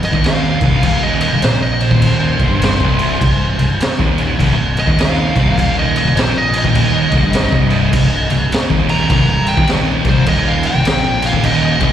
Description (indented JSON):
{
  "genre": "stoner and doom metal",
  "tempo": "102 BPM",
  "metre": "4/4",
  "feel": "swing 63% on 8ths",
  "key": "C minor",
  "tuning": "A4 = 441 Hz",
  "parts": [
    { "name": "fuzz lead guitar", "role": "melody", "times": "0.0-11.9 s", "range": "C5 to Bb5", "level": "-20 LUFS", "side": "equal", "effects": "distortion, slapback echo, ping-pong delay" },
    { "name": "fuzz guitar", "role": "riff", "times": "0.0-11.9 s", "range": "C2 to Bb2", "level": "-24 LUFS", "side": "right 2 dB", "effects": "none" },
    { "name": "thick fuzz guitar", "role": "riff", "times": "0.0-11.9 s", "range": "C2 to Bb2", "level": "-18 LUFS", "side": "left 5 dB", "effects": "distortion" },
    { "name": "thick fuzz guitar", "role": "riff", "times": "0.0-11.9 s", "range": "C2 to Bb2", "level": "-20 LUFS", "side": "right 10 dB", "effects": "distortion" },
    { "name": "fuzz fingered electric bass", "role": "bass", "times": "0.0-11.9 s", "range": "C1 to Bb1", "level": "-20 LUFS", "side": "equal", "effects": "overdrive" },
    { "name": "raw garage drum kit", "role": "drums", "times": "0.0-11.9 s", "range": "crash cymbal, kick drum, snare drum", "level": "-16 LUFS", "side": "equal", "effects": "none" }
  ],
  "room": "small room ambience",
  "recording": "live gig heard through the venue's PA, recital hall reverb",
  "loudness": "-12 LUFS",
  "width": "side -10 dB against mid",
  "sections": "0.0-11.9 A section",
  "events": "lead electric guitar solo 0.0-11.9",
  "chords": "0.0 Cm"
}